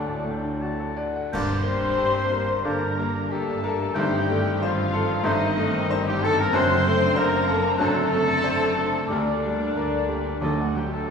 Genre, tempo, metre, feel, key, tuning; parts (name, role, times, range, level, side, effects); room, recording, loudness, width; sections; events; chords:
classical, romantic movement for piano and orchestra; 93 BPM; 4/4; uneven beats, rubato; G minor; A4 = 440 Hz
bright baby grand piano; melody; 0.0-11.1 s; D2 to F#5; -27 LUFS; left 1 dB
muted studio violin section; melody; 0.0-11.1 s; F#4 to C6; -31 LUFS; left 6 dB
clear oboe; second line; 0.0-10.7 s; A4 to A5; -37 LUFS; right 1 dB
mellow hollow concert flute; second line; 0.0-10.7 s; A5 to G6; -35 LUFS; right 1 dB
muted symphonic violin section; second line; 0.0-11.1 s; D4 to C5; -32 LUFS; left 4 dB
warm clarinet; second line; 0.0-10.6 s; D4 to Eb4; -35 LUFS; left 2 dB
mellow bassoon; accompaniment; 0.0-10.7 s; F#3 to Bb3; -35 LUFS; equal
muted symphonic viola section; accompaniment; 0.0-11.1 s; F#3 to D5; -34 LUFS; left 1 dB
mellow French horn section; sustained chords; 0.0-11.1 s; D3 to D4; -32 LUFS; left 4 dB
mellow trumpet; stabs; 0.0-11.1 s; D4 to D5; -29 LUFS; equal
muted symphonic cello section; bass; 0.0-11.0 s; D2 to D3; -33 LUFS; right 2 dB
muted symphonic double bass section; bass; 0.0-11.0 s; F#1 to D2; -32 LUFS; right 2 dB
warm trombone section; sustained chords; 1.3-11.1 s; D3 to D4; -34 LUFS; right 2 dB
clash cymbals and concert bass drum; percussion; 1.3-2.6 s; -39 LUFS; equal
timpani; percussion; 4.0-4.9, 10.4-11.1 s; G2 to D3; -33 LUFS; right 2 dB
wet recital hall reverb, RT60 1.6 s; recorded in a church or concert hall, studio reverb; -21 LUFS; side -6 dB against mid
0.0-1.3 A section; 1.3-11.1 B section
band accent 1.3-2.0
0.0 D; 1.3 Gm; 4.0 Am7b5/G; 6.5 D7/F#; 9.1 Gm/D; 10.4 D